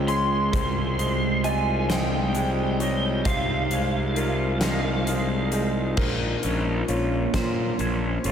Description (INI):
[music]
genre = post-rock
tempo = 44 BPM (dotted quarters)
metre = 6/8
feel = straight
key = F minor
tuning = A4 = 440 Hz
[part]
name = overdriven slide guitar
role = melody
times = 0.0-5.5 s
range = F5 to C6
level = -28 LUFS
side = right 1 dB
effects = ensemble chorus, diffuse ambient delay
[part]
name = soft additive organ-like pad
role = sustained chords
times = 0.0-8.3 s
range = Db3 to F4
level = -30 LUFS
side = right 1 dB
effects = ensemble chorus, built-in reverb
[part]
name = electric guitar through a small old amp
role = arpeggios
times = 0.0-8.3 s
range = Bb2 to C5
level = -31 LUFS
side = left 2 dB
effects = wide subtle chorus, diffuse ambient delay
[part]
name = felt-muted upright piano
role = arpeggios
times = 0.0-8.3 s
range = Ab4 to Eb5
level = -33 LUFS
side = right 2 dB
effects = diffuse ambient delay
[part]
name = fuzz picked electric bass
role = bass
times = 0.0-8.3 s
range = Ab1 to Bb2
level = -26 LUFS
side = equal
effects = overdrive
[part]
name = huge arena drum kit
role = drums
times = 0.1-8.3 s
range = crash cymbal, hi-hat, kick drum, snare drum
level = -30 LUFS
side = equal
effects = none
[sound]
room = wet huge ambient reverb, RT60 5.0 s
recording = dreamy mix soaked in reverb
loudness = -22 LUFS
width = side -8 dB against mid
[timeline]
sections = 0.0-6.0 A section; 6.0-8.3 B section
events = none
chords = 0.0 Dbmaj7; 0.5 Fm7/C; 6.0 Bbmadd9